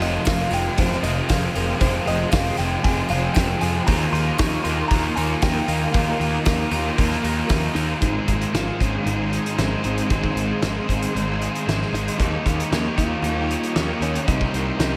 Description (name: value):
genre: rock, shoegaze and dream pop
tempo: 116 BPM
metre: 4/4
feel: straight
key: unclear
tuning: A4 = 441 Hz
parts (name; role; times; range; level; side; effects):
- direct-recorded clean electric guitar; melody; 0.0-15.0 s; C4 to Db6; -32 LUFS; equal; subtle chorus, diffuse ambient delay
- ethereal airy pad; sustained chords; 0.0-15.0 s; F4 to Db6; -36 LUFS; equal; ensemble chorus, built-in reverb
- overdriven electric guitar; riff; 0.0-15.0 s; F2 to Db5; -29 LUFS; equal; reverse reverb
- thick fuzz guitar; riff; 0.0-15.0 s; F2 to Eb4; -30 LUFS; equal; distortion, ensemble chorus
- fuzz picked electric bass; bass; 0.0-15.0 s; F1 to F2; -28 LUFS; equal; overdrive
- loose indie drum kit; drums; 0.0-14.9 s; hi-hat, kick drum, snare drum; -27 LUFS; equal; none
- tambourine; percussion; 0.0-7.9 s; none; -42 LUFS; equal; none
room: wet huge ambient reverb, RT60 7.7 s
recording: dreamy mix soaked in reverb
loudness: -22 LUFS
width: mono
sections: 0.0-8.0 A section; 8.0-15.0 B section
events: none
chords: 0.0 Fmadd9; 3.9 Ebsus2; 8.0 Ab6; 12.2 Eb5; 14.3 Cm7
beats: 0.26 0.78 1.29 | 1.81 2.32 2.84 3.36 | 3.87 4.39 4.91 5.42 | 5.94 6.46 6.98 7.50 | 8.02 8.54 9.06 9.58 | 10.10 10.62 11.14 11.67 | 12.19 12.71 13.23 13.76 | 14.28 14.80